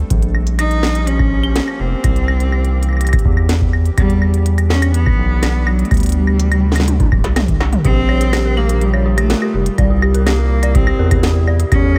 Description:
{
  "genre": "IDM",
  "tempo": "124 BPM",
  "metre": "4/4",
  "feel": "straight",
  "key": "unclear",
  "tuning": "A4 = 440 Hz",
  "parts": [
    { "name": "glassy FM pad", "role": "sustained chords", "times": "0.0-12.0 s", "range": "Bb2 to G4", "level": "-28 LUFS", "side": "equal", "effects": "ensemble chorus, built-in reverb" },
    { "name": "round analog bass", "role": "bass", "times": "0.0-12.0 s", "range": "D1 to E2", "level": "-18 LUFS", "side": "equal", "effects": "none" },
    { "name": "electronic kick drum", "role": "drums", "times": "0.1-11.8 s", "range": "none", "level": "-19 LUFS", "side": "equal", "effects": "none" },
    { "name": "industrial drum kit", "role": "drums", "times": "0.1-12.0 s", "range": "claves, hi-hat, snare drum, toms", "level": "-23 LUFS", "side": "equal", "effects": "none" },
    { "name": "clear cello", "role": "melody", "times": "0.6-12.0 s", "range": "F#3 to Eb4", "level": "-23 LUFS", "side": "equal", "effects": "delay" },
    { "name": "dark detuned synth bell", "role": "arpeggios", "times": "7.8-12.0 s", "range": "G4 to D5", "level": "-25 LUFS", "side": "equal", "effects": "chorus, delay" }
  ],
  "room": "digital ambience",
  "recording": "none",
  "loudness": "-15 LUFS",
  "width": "mono",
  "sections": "0.0-7.8 A section; 7.8-12.0 B section",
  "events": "drum fill 6.9-7.8",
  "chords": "0.1 Bbm6; 2.0 C7; 4.0 Em7; 5.9 D7sus4; 7.8 Bbm6; 9.8 C7"
}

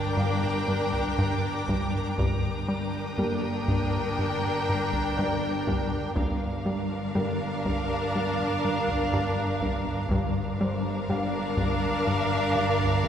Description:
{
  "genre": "cinematic, suspense film score",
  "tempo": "60 BPM",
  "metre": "4/4",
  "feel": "straight",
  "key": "unclear",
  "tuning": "A4 = 442 Hz",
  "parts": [
    { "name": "clear chamber violin section", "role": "melody", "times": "0.0-13.1 s", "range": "F5 to G5", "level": "-34 LUFS", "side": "equal", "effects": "none" },
    { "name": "rich studio violin section", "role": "second line", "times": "0.0-13.1 s", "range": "Bb4", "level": "-33 LUFS", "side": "equal", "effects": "none" },
    { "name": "rich chamber viola section", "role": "accompaniment", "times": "0.0-13.1 s", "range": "D4", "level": "-32 LUFS", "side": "equal", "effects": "none" },
    { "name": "rich symphonic cello section", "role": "bass", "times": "0.0-13.1 s", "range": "G2", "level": "-34 LUFS", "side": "equal", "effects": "none" },
    { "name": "warm chamber double bass section", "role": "bass", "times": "0.0-13.1 s", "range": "G1", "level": "-36 LUFS", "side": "right 2 dB", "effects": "none" },
    { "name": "clear chamber violin section", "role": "texture", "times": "0.0-5.6 s", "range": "Bb5 to D6", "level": "-39 LUFS", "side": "left 1 dB", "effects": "none" },
    { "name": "felt-muted upright piano", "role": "texture", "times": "0.0-13.1 s", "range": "Bb3 to F5", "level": "-37 LUFS", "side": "equal", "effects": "none" },
    { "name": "plucky analog bass", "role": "riff", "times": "0.2-13.1 s", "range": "G2 to G3", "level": "-30 LUFS", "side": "left 1 dB", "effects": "none" },
    { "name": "taiko ensemble", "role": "drums", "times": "0.4-13.1 s", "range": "none", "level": "-34 LUFS", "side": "right 1 dB", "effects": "none" }
  ],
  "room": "wet concert hall reverb, RT60 2.0 s",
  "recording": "heard from further back in the room",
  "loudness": "-24 LUFS",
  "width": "side -9 dB against mid",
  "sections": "0.0-13.1 A section",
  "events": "none",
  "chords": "0.0 Bb6/G"
}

